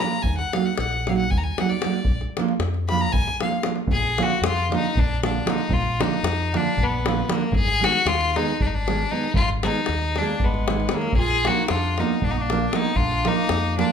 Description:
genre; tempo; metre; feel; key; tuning
balkan folk, Balkan wedding band; 231 BPM (eighths); 7/8; straight; Bb phrygian dominant; A4 = 440 Hz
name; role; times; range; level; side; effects
bright violin; melody; 0.0-13.9 s; Bb3 to Cb6; -24 LUFS; left 4 dB; none
nylon-string guitar; accompaniment; 0.0-13.9 s; D3 to Bb4; -26 LUFS; right 6 dB; none
davul; percussion; 0.1-13.9 s; none; -25 LUFS; left 1 dB; none
deep dub fingered electric bass; bass; 0.2-13.8 s; Ab1 to F2; -27 LUFS; left 1 dB; none
mellow clarinet; second line; 10.2-13.9 s; Gb3 to F4; -29 LUFS; right 2 dB; none
room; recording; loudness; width
moderate large studio reverb, RT60 0.8 s; band playing live in one room; -20 LUFS; side -7 dB against mid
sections
0.0-3.9 A section; 3.9-13.9 B section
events
violin solo 0.0-3.9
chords
0.2 Ebm; 2.1 Bb; 7.5 Abm; 11.2 Bb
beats
| 0.24 0.50 0.76 1.02 1.28 1.54 1.80 | 2.06 2.32 2.58 2.84 3.10 3.37 3.62 | 3.88 4.15 4.41 4.67 4.93 5.19 5.45 | 5.71 5.97 6.22 6.49 6.75 7.00 7.26 | 7.52 7.78 8.04 8.30 8.56 8.82 9.08 | 9.34 9.60 9.86 10.12 10.38 10.64 10.90 | 11.15 11.41 11.67 11.93 12.19 12.45 12.71 | 12.97 13.22 13.48 13.74

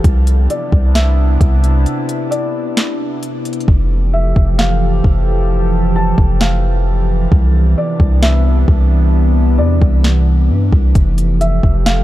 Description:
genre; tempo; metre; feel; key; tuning
hip hop, atmospheric cloud-rap; 132 BPM; 4/4; half-time; F lydian; A4 = 440 Hz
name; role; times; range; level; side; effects
warbly tape-like pad; sustained chords; 0.0-12.0 s; C3 to A4; -19 LUFS; equal; chorus, built-in reverb, sidechain pumping
long sustained 808-style bass; bass; 0.0-12.0 s; F1 to G2; -12 LUFS; equal; none
smooth R&B drum kit; drums; 0.0-12.0 s; hi-hat, kick drum, snare drum; -14 LUFS; equal; overdrive
felt-muted upright piano; melody; 0.5-12.0 s; D5 to A5; -24 LUFS; equal; low-pass filter, ping-pong delay
room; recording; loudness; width
digital ambience; dark, warm production; -11 LUFS; side -15 dB against mid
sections
0.0-12.0 A section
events
break 1.9-3.7; hi-hats muted 3.7-11.0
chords
0.0 Cmaj9; 3.7 Fmaj9; 7.3 Cmaj9; 11.0 Fmaj9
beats
| 0.04 0.50 0.95 1.41 | 1.86 2.32 2.77 3.23 | 3.68 4.13 4.59 5.04 | 5.50 5.95 6.41 6.86 | 7.32 7.77 8.23 8.68 | 9.13 9.59 10.04 10.50 | 10.95 11.41 11.86

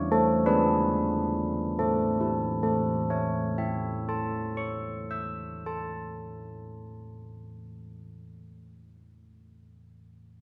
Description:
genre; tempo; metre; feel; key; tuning
classical, tune for church bells; 45 BPM; 4/4; straight; A major; A4 = 440 Hz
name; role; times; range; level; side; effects
carillon bells; solo; 0.0-8.6 s; E3 to E6; -29 LUFS; equal; none
room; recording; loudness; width
wet recital hall reverb, RT60 1.8 s; none; -28 LUFS; mono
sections
0.0-1.8 A section; 1.8-7.1 B section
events
slowing down 0.0-1.8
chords
0.0 E7; 1.8 A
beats
0.45 | 1.79 3.12 4.46 5.80

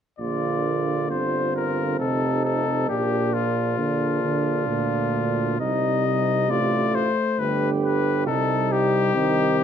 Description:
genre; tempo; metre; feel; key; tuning
classical, brass quintet; 67 BPM; 3/4; straight; Bb major; A4 = 440 Hz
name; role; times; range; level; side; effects
clear trumpet; melody; 0.2-9.6 s; F4 to Eb5; -25 LUFS; left 8 dB; none
mellow flugelhorn; second line; 0.2-9.6 s; D4 to G4; -28 LUFS; right 7 dB; none
mellow French horn; accompaniment; 0.2-9.6 s; G3 to C4; -29 LUFS; left 3 dB; none
mellow trombone; accompaniment; 0.2-9.6 s; Bb2 to Eb3; -27 LUFS; right 3 dB; none
clear tuba; bass; 0.2-9.6 s; F1 to D2; -28 LUFS; right 5 dB; none
room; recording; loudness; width
moderate recital hall reverb, RT60 1.4 s; close, detailed microphones; -20 LUFS; side -8 dB against mid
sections
0.2-9.6 A section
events
none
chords
0.2 Bb; 2.0 F7; 2.9 Bb; 5.6 Cm; 7.4 G; 8.3 Cm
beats
| 0.20 1.10 2.00 | 2.89 3.78 4.68 | 5.60 6.50 7.39 | 8.27 9.15

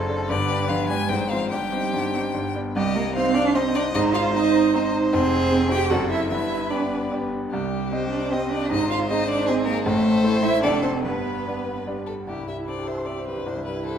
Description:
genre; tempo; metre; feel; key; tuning
quick classical-period movement for piano quartet; 142-158 BPM; 3/4; rubato; C minor, C major from 9.9 s; A4 = 440 Hz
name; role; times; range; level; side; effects
rich violin; second line; 0.0-14.0 s; C4 to F5; -31 LUFS; left 3 dB; none
bright concert grand piano; accompaniment; 0.0-14.0 s; F1 to C6; -25 LUFS; left 1 dB; none
rich violin; melody; 0.3-14.0 s; G4 to Ab5; -29 LUFS; left 6 dB; none
warm cello; second line; 0.3-14.0 s; D3 to A4; -24 LUFS; right 5 dB; none
room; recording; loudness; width
wet recital hall reverb, RT60 1.4 s; none; -20 LUFS; side -8 dB against mid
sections
0.0-2.8 A section; 2.8-12.3 B section; 12.3-14.0 C section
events
none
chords
0.3 G; 1.1 Fm/Ab; 1.5 Cm/G; 2.3 G; 2.8 Cm; 4.0 Ab; 5.1 Fm; 5.9 D7/F#; 6.3 G; 7.5 Cm; 8.7 Ab; 9.9 Am; 10.6 Dm/F; 11.0 G; 12.3 C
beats
| 0.29 0.69 1.09 | 1.50 1.93 2.35 | 2.76 3.16 3.56 | 3.95 4.35 4.74 | 5.13 5.51 5.90 | 6.30 6.71 7.11 | 7.52 7.92 8.32 | 8.71 9.09 9.47 | 9.85 10.23 10.64 | 11.04 11.45 11.87 | 12.28 12.68 13.08 | 13.47 13.86

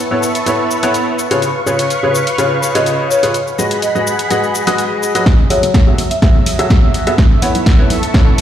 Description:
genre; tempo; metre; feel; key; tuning
piano house; 125 BPM; 4/4; straight; F# dorian; A4 = 440 Hz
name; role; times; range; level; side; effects
marimba with soft mallets; melody; 0.0-7.8 s; C#5 to F#5; -20 LUFS; left 1 dB; tape echo
analog string pad; sustained chords; 0.0-8.4 s; G#4 to C#6; -20 LUFS; equal; ensemble chorus, sidechain pumping
clear upright piano; riff; 0.1-8.4 s; C#3 to E5; -16 LUFS; equal; sidechain pumping, low-pass filter, tape echo
house drum kit; drums; 0.2-8.4 s; hi-hat, shaker, snare drum; -20 LUFS; left 1 dB; studio reverb
organ-like FM bass; bass; 5.3-8.4 s; F#1 to C#2; -25 LUFS; equal; sidechain pumping, high-pass filter
electronic kick drum; drums; 5.3-8.2 s; none; -10 LUFS; equal; studio reverb
room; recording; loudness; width
light reverb; played on a big sound system in a bare room, large studio reverb; -11 LUFS; side -10 dB against mid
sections
0.0-5.3 A section; 5.3-8.4 B section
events
build-up 5.3-8.4; drum fill 5.3-8.4; filter sweep on upright piano 5.3-8.4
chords
0.0 B9sus4; 1.2 C#7; 3.3 G#m7; 5.3 F#m9; 7.2 B9sus4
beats
0.46 0.94 | 1.42 1.90 2.38 2.86 | 3.34 3.82 4.30 4.78 | 5.26 5.74 6.22 6.70 | 7.18 7.66 8.14

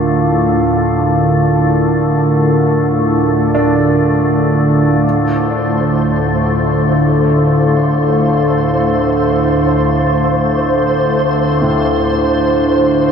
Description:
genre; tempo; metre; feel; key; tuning
dark ambient drone; free time; none; none; D minor; A4 = 440 Hz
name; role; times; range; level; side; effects
dark analog pad; sustained chords; 0.0-13.1 s; D4 to F5; -16 LUFS; right 1 dB; lush chorus
organ-like drone; drone; 0.0-13.1 s; D2 to A2; -14 LUFS; equal; ensemble chorus, built-in reverb
warm grand piano; arpeggios; 3.5-13.1 s; A2 to D4; -22 LUFS; right 2 dB; tape echo
flickering grainy texture; texture; 5.4-13.1 s; C5; -20 LUFS; right 1 dB; built-in reverb
room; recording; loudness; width
wet cathedral reverb, RT60 4.6 s; none; -11 LUFS; side -7 dB against mid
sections
0.0-13.1 A section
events
fade-out 12.0-13.1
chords
0.0 Bb; 5.0 Dm7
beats
free time

